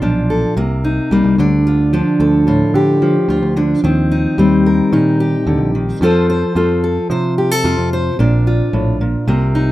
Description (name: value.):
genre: indie folk with a building arrangement.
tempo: 110 BPM.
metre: 4/4.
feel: straight.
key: Bb major.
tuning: A4 = 440 Hz.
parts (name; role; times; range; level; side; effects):
fingerpicked steel-string acoustic guitar; accompaniment; 0.0-9.7 s; A2 to C5; -13 LUFS; equal; none.
picked electric bass; bass; 0.0-9.7 s; Bb1 to F3; -18 LUFS; equal; none.
room: light reverb.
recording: rough home demo mix.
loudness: -12 LUFS.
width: side -15 dB against mid.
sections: 0.0-9.7 A section.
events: none.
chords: 0.0 Bb; 0.6 Cm7; 1.4 Dm; 3.8 Eb6; 6.0 F; 8.2 Bb.